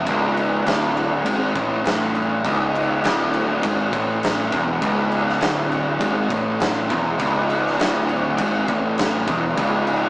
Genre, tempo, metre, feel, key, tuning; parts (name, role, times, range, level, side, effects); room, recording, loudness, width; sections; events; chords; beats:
stoner and doom metal; 101 BPM; 4/4; straight; C# minor; A4 = 441 Hz
fuzz guitar; riff; 0.0-10.1 s; C#2 to A2; -23 LUFS; equal; distortion
fuzz picked electric bass; bass; 0.0-10.1 s; C#1 to A1; -24 LUFS; equal; overdrive
oversized low-tuned drum kit; drums; 0.1-10.0 s; crash cymbal, kick drum, snare drum; -21 LUFS; equal
light reverb; rough rehearsal-room recording, warm saturation, small speaker sound; -18 LUFS; side -24 dB against mid
0.0-10.1 A section
0.0 C#m
| 0.07 0.66 1.25 1.85 | 2.44 3.04 3.63 4.22 | 4.82 5.41 6.01 6.60 | 7.20 7.79 8.39 8.98 | 9.58